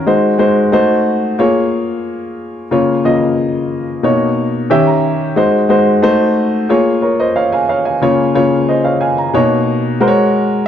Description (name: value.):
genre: soul.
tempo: 90 BPM.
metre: 4/4.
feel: straight.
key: Db major.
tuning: A4 = 440 Hz.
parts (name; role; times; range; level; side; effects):
warm baby grand piano; solo; 0.0-10.7 s; Cb3 to Bb5; -11 LUFS; left 1 dB; slapback echo.
room: light reverb.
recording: dark, warm production.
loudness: -11 LUFS.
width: side -9 dB against mid.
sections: 0.1-10.7 A section.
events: grand piano fill 4.4-5.4.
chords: 0.1 Ab7; 0.7 Adim7; 1.4 Bbm7; 2.7 Db6; 4.0 Cbmaj9; 4.7 Eb7b9; 5.4 Ab7; 6.0 Adim7; 6.7 Bbm7; 8.0 Db6; 9.3 Cbmaj9; 10.0 Ab9sus4.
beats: | 0.06 0.72 1.39 2.05 | 2.71 3.38 4.04 4.70 | 5.37 6.03 6.69 7.36 | 8.02 8.68 9.35 10.01 | 10.67.